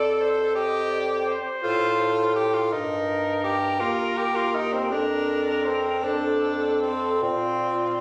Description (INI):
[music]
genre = classical, lyrical piece for single-reed quartet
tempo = 48-58 BPM (dotted quarters)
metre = 12/8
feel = rubato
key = unclear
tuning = A4 = 439 Hz
[part]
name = mellow clarinet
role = melody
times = 0.0-8.0 s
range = A4 to D5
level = -32 LUFS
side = equal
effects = none
[part]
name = bright alto saxophone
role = second line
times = 0.0-8.0 s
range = F4 to Eb5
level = -33 LUFS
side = equal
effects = none
[part]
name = bright tenor saxophone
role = accompaniment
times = 0.0-8.0 s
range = C4 to A4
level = -28 LUFS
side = equal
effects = none
[part]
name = warm bass clarinet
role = bass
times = 0.0-8.0 s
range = Eb2 to Bb2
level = -30 LUFS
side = equal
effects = none
[sound]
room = moderate recital hall reverb, RT60 1.3 s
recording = recorded on a phone in the room, studio reverb, compression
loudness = -24 LUFS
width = mono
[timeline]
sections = 0.0-8.0 A section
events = none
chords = 0.0 F; 2.7 Eb/G; 4.9 Bb/F; 7.2 Bb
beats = 0.55 1.63 | 2.72 3.80 4.90 6.03 | 7.22